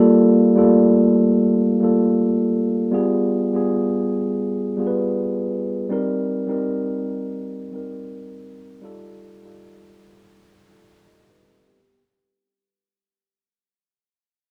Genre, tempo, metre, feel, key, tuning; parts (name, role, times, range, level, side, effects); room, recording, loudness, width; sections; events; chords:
hip hop; 81 BPM; 4/4; swing 62% on 16ths; G minor; A4 = 440 Hz
mellow tine electric piano; solo; 0.0-12.0 s; G3 to Eb5; -19 LUFS; equal; low-pass filter
light reverb; rough home demo mix, small room ambience; -19 LUFS; mono
0.0-11.8 A section
fade-out 0.0-11.8
0.0 Gm9; 2.9 G7b9; 5.9 Cm7; 8.8 F9